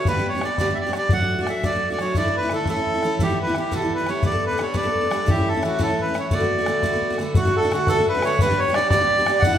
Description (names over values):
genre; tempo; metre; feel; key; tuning
celtic folk, Celtic jig; 115 BPM (dotted quarters); 6/8; straight; D major; A4 = 441 Hz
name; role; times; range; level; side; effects
accordion; melody; 0.0-9.6 s; F#4 to F#5; -22 LUFS; right 1 dB; none
picked steel-string acoustic guitar; accompaniment; 0.0-9.6 s; E2 to A4; -24 LUFS; equal; none
bodhran; percussion; 0.1-9.5 s; none; -24 LUFS; left 1 dB; none
mellow wooden flute; second line; 7.4-9.6 s; F#4 to F#5; -24 LUFS; left 2 dB; none
room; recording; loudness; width
wet large studio reverb, RT60 1.3 s; band playing live in one room; -19 LUFS; side -10 dB against mid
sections
0.0-7.4 A section; 7.4-9.6 A section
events
none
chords
0.1 G; 1.1 D/F#; 2.1 Asus4; 2.7 A; 3.2 Em; 4.2 Gadd9; 5.3 A; 6.3 D6; 7.4 D; 8.4 G